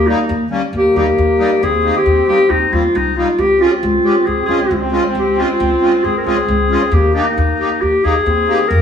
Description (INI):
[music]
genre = klezmer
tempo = 136 BPM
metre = 4/4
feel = straight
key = unclear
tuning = A4 = 438 Hz
[part]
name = warm clarinet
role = melody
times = 0.0-8.8 s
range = Eb4 to Bb4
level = -14 LUFS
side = left 1 dB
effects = none
[part]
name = clear trombone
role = second line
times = 0.0-8.8 s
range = Bb3 to C4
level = -22 LUFS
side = right 2 dB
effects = none
[part]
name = upright bass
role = bass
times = 0.0-8.8 s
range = C2 to F2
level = -19 LUFS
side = left 1 dB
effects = none
[part]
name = accordion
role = accompaniment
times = 0.1-8.6 s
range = G3 to G4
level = -20 LUFS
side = equal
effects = light tremolo tuning
[sound]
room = wet stone room reverb, RT60 1.0 s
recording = band playing live in one room, small room ambience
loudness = -12 LUFS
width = side -8 dB against mid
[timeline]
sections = 0.0-8.8 A section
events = none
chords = 0.0 Eb; 3.4 Db; 6.9 Eb